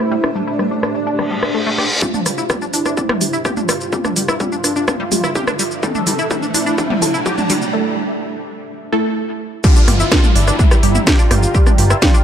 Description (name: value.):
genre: melodic techno.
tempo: 126 BPM.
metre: 4/4.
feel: straight.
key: G dorian.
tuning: A4 = 440 Hz.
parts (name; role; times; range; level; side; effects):
wide unison lead; melody; 0.0-12.2 s; D4 to A4; -24 LUFS; equal; ensemble chorus, sidechain pumping, digital delay.
dark analog pad; sustained chords; 0.0-12.2 s; G3 to Bb5; -29 LUFS; right 2 dB; chorus, phaser, sidechain pumping.
techno drum kit; drums; 0.0-12.2 s; crash cymbal, hi-hat, rim click, shaker, snare drum, toms; -18 LUFS; equal; sidechain pumping on perc, low-pass filter on perc, low-pass filter on snare, sidechain pumping on toms, low-pass filter on toms, sidechain pumping on hats, low-pass filter on hats, sidechain pumping on cymbals, low-pass filter on cymbals, low-pass filter on room.
granular cloud pad; texture; 0.0-7.7 s; A3 to E5; -26 LUFS; right 2 dB; built-in reverb, sidechain pumping.
tight sequenced synth; arpeggios; 0.1-12.2 s; G3 to G5; -23 LUFS; left 2 dB; chorus, sidechain pumping, dub echo.
reverse cymbal, riser and downlifter; sound effects; 1.2-12.2 s; none; -24 LUFS; equal; none.
filtered dub chord stab; stabs; 2.0-12.2 s; G3 to A4; -22 LUFS; right 1 dB; phaser, wide subtle chorus, sidechain pumping, dub echo.
electronic kick drum; drums; 2.0-12.1 s; none; -14 LUFS; equal; high-pass filter on kick, high-pass filter on room.
fat analog bass; bass; 9.9-11.9 s; G1; -15 LUFS; equal; sidechain pumping.
room: light reverb, digital ambience.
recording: none.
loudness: -14 LUFS.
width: side -9 dB against mid.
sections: 0.0-2.0 A section; 2.0-9.6 B section; 9.6-12.2 C section.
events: filter sweep on synth arpeggio sound 0.0-2.0; reverse cymbal 1.2-2.0; build-up 2.0-9.6; drum fill 2.0-7.7; riser 2.0-7.7; filter sweep on analog synth lead 2.0-9.6; filter sweep on synth stab 2.0-9.6; filter sweep on analog synth pad 2.0-9.6; break 7.7-9.6; drop 9.6-12.2.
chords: 0.0 Am; 2.0 Gm7; 5.8 Am; 9.6 Gm7.